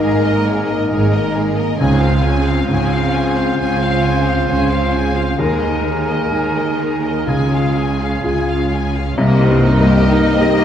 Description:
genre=cinematic, emotional film score for orchestra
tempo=62-68 BPM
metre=4/4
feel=rubato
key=Db major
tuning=A4 = 440 Hz
part: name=rich studio violin section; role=melody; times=0.0-10.6 s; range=Bb4 to Ab5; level=-24 LUFS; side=left 5 dB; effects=none
part: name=hollow concert flute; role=second line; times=0.0-10.6 s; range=Eb5 to Ab5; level=-26 LUFS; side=left 1 dB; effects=none
part: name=rich studio violin section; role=second line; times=0.0-10.6 s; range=Bb3 to Bb4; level=-26 LUFS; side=left 1 dB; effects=none
part: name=warm oboe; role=second line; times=0.0-10.6 s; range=Ab4 to C5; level=-26 LUFS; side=equal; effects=none
part: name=felt-muted upright piano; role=accompaniment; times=0.0-10.6 s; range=C2 to Ab4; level=-20 LUFS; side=left 1 dB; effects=none
part: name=warm studio viola section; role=accompaniment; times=0.0-10.6 s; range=Ab3 to F4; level=-25 LUFS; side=equal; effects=none
part: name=warm French horn section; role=sustained chords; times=0.0-10.6 s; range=Ab3 to Ab4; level=-23 LUFS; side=left 1 dB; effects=none
part: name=warm studio cello section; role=bass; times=0.0-10.0 s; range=Ab2 to Eb3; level=-22 LUFS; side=right 2 dB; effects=none
part: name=warm studio double bass section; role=bass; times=0.0-10.0 s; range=Ab1 to Eb2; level=-20 LUFS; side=right 2 dB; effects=none
room=wet scoring stage reverb, RT60 1.7 s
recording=heard from further back in the room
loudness=-13 LUFS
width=side -9 dB against mid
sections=0.0-9.2 A section; 9.2-10.6 B section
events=none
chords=0.0 Absus2; 1.8 Dbmaj7; 5.4 Ebsus4; 7.3 Db; 9.2 Cm7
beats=0.01 0.90 | 1.79 2.68 3.59 4.49 | 5.38 6.31 7.27 8.23 | 9.19 10.11

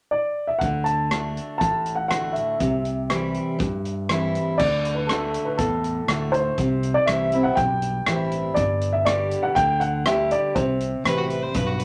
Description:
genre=honky-tonk and classic country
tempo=121 BPM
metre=4/4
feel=straight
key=D mixolydian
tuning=A4 = 440 Hz
part: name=dark upright piano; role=melody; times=0.1-11.0 s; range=A4 to A5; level=-26 LUFS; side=equal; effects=none
part: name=picked steel-string acoustic guitar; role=accompaniment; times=0.6-11.8 s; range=G2 to G4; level=-29 LUFS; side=equal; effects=none
part: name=fingered electric bass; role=bass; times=0.6-11.8 s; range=G1 to G2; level=-32 LUFS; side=equal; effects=none
part: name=natural country drum kit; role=drums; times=0.6-11.8 s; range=crash cymbal, hi-hat, kick drum, rim click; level=-30 LUFS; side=equal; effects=none
part: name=clear fiddle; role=second line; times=11.1-11.8 s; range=F#4 to C5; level=-29 LUFS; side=equal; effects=none
room=wet club reverb, RT60 0.5 s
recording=none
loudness=-23 LUFS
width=mono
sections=0.6-4.6 A section; 4.6-11.8 B section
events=none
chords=0.0 N.C.; 0.6 D; 2.6 C; 4.6 D; 6.6 C; 8.6 G; 10.6 C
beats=0.11 | 0.61 1.11 1.61 2.10 | 2.60 3.10 3.60 4.09 | 4.59 5.09 5.59 6.08 | 6.58 7.08 7.57 8.07 | 8.57 9.06 9.56 10.05 | 10.55 11.05 11.54

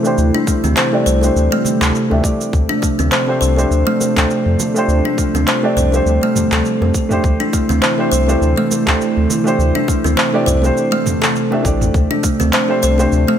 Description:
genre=organic downtempo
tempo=102 BPM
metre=4/4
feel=swing 56% on 16ths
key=D minor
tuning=A4 = 440 Hz
part: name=felt-muted upright piano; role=accompaniment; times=0.0-13.4 s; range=A3 to E5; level=-21 LUFS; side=right 1 dB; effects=sidechain pumping, low-pass filter, ping-pong delay
part: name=warm analog pad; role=sustained chords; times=0.0-13.4 s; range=C3 to E4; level=-23 LUFS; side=left 2 dB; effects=lush chorus, sidechain pumping
part: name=kalimba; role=arpeggios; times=0.0-13.4 s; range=A3 to C5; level=-17 LUFS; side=equal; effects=ping-pong delay
part: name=organic electronic drum kit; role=drums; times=0.0-13.3 s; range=cabasa, handclaps, toms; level=-20 LUFS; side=right 1 dB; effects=none
part: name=warm sub bass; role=bass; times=0.2-13.3 s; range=A1 to F2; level=-16 LUFS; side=equal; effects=sidechain pumping
part: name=congas and bongos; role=percussion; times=0.3-13.1 s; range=none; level=-29 LUFS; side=right 3 dB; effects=none
part: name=electronic kick drum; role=drums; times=0.5-12.4 s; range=none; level=-18 LUFS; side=equal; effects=none
room=moderate lush hall reverb, RT60 2.1 s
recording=none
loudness=-13 LUFS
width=side -9 dB against mid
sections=0.0-13.4 A section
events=filter sweep on felt piano 0.0-13.4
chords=0.0 Am; 2.5 Dm7; 7.2 Am; 11.9 Dm7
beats=| 0.18 0.77 1.36 1.95 | 2.53 3.12 3.71 4.30 | 4.89 5.47 6.06 6.65 | 7.24 7.83 8.41 9.00 | 9.59 10.18 10.77 11.36 | 11.95 12.53 13.12

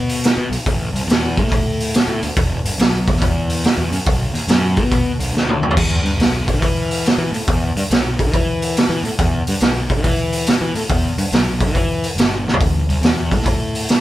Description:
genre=blues rock power trio and southern rock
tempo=141 BPM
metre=4/4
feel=swing 66% on 8ths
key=E minor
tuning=A4 = 440 Hz
part: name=fuzz picked electric bass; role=bass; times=0.0-13.9 s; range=E1 to E3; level=-20 LUFS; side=left 1 dB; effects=overdrive
part: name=raw garage drum kit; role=drums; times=0.1-14.0 s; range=crash cymbal, hi-hat, kick drum, snare drum, toms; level=-16 LUFS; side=equal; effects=none
room=light reverb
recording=band playing live in one room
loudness=-15 LUFS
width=side -15 dB against mid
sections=0.0-5.8 A section; 5.8-14.0 A section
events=drum fill 5.3-5.8, 12.4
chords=none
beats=0.24 | 0.66 1.09 1.51 1.94 | 2.36 2.79 3.21 3.64 | 4.07 4.49 4.92 5.34 | 5.77 6.20 6.62 7.05 | 7.48 7.91 8.33 8.76 | 9.19 9.61 10.04 10.47 | 10.89 11.32 11.75 12.17 | 12.60 13.03 13.45 13.88

